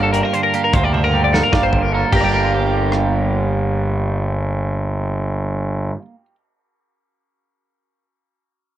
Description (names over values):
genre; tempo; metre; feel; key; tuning
math rock and midwest emo; 302 BPM (eighths); 7/8; straight; G minor; A4 = 441 Hz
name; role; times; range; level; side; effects
twelve-string electric guitar; accompaniment; 0.0-6.4 s; G2 to G4; -21 LUFS; right 5 dB; none
twelve-string electric guitar; arpeggios; 0.0-6.0 s; G4 to G5; -21 LUFS; left 4 dB; wide subtle chorus
fuzz picked electric bass; bass; 0.0-5.9 s; G1 to D2; -19 LUFS; equal; overdrive
modern studio drum kit; drums; 0.1-3.0 s; crash cymbal, hi-hat, kick drum, rim click, snare drum, toms; -23 LUFS; equal; none
room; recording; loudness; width
little or no reverb; worn, warbling old tape, cassette tape, warbly pitch drift; -16 LUFS; side -12 dB against mid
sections
0.0-2.1 A section; 2.1-4.9 B section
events
drum fill 0.9-2.1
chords
0.0 Gm7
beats
0.14 0.34 0.54 | 0.74 0.94 1.14 1.33 1.53 1.73 1.93 | 2.13 2.33 2.53 2.73 2.92 3.12 3.32 | 3.52 3.72 3.92 4.12 4.32 4.52 4.72